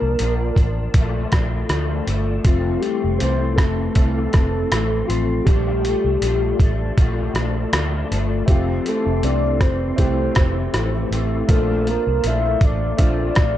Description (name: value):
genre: indie pop, bedroom pop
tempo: 80 BPM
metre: 4/4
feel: swing 55% on 16ths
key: unclear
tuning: A4 = 440 Hz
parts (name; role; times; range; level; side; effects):
- soft octave-layered synth lead; melody; 0.0-13.6 s; F4 to E5; -24 LUFS; left 1 dB; lush chorus, analog delay
- electric guitar through a small old amp; accompaniment; 0.0-13.6 s; F2 to D4; -25 LUFS; left 2 dB; ensemble chorus, vibrato effect
- vintage muted fingered electric bass; bass; 0.0-13.6 s; F1 to D2; -22 LUFS; equal; none
- lo-fi sampler-style drum kit; drums; 0.2-13.6 s; hi-hat, kick drum, rim click; -19 LUFS; equal; vintage 12-bit sampler grit
- warm upright piano; accompaniment; 8.5-13.6 s; A3 to E5; -28 LUFS; right 1 dB; none
room: light reverb, digital ambience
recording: dark, warm production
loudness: -17 LUFS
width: side -12 dB against mid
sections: 0.0-13.6 A section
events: none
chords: 0.0 Bbmaj7; 2.5 Fmaj7; 5.5 Bbmaj7; 8.5 Fmaj7; 11.5 Bbmaj7